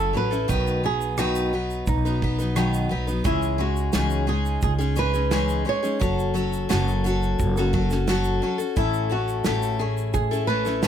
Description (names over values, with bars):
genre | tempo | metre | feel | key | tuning
acoustic pop | 87 BPM | 4/4 | straight | unclear | A4 = 440 Hz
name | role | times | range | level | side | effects
flamenco guitar | melody | 0.0-10.9 s | D#4 to C#5 | -27 LUFS | right 2 dB | none
picked steel-string acoustic guitar | accompaniment | 0.0-10.9 s | A2 to B4 | -25 LUFS | left 3 dB | none
upright bass | bass | 0.0-10.9 s | F#1 to C#2 | -25 LUFS | right 1 dB | none
natural country drum kit | drums | 0.3-10.9 s | kick drum, rim click, shaker, snare drum | -28 LUFS | right 2 dB | none
room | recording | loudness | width
light reverb | close, detailed microphones | -21 LUFS | side -9 dB against mid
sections
0.0-3.3 A section; 3.3-10.9 B section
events
none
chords
0.0 F#m7; 0.5 B; 3.3 C#madd9; 6.0 F#m; 8.8 A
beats
| 0.50 1.19 1.88 2.57 | 3.26 3.95 4.64 5.33 | 6.01 6.70 7.39 8.08 | 8.77 9.46 10.15 10.84